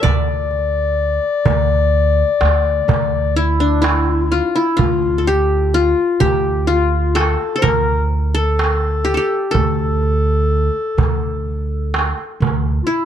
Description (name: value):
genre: Turkish makam ensemble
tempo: 126 BPM (eighths)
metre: 10/8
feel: straight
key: D makam nihavent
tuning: A4 = 439 Hz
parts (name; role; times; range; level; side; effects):
- qanun; melody; 0.0-13.1 s; D4 to E5; -19 LUFS; left 2 dB; none
- dark clarinet; second line; 0.0-13.1 s; D4 to D5; -20 LUFS; left 4 dB; tape echo
- upright bass; bass; 0.0-12.8 s; D2; -18 LUFS; right 1 dB; none
- darbuka; percussion; 0.0-12.6 s; none; -20 LUFS; right 3 dB; none
room: light reverb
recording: dark, warm production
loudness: -14 LUFS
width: side -9 dB against mid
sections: 0.0-4.8 A section; 4.8-13.1 B section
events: none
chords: none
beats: | 0.03 0.51 0.98 1.46 1.93 2.41 2.88 3.36 3.84 4.31 | 4.79 5.26 5.74 6.21 6.69 7.17 7.64 8.12 8.60 9.07 | 9.55 10.02 10.50 10.98 11.45 11.93 12.40 12.88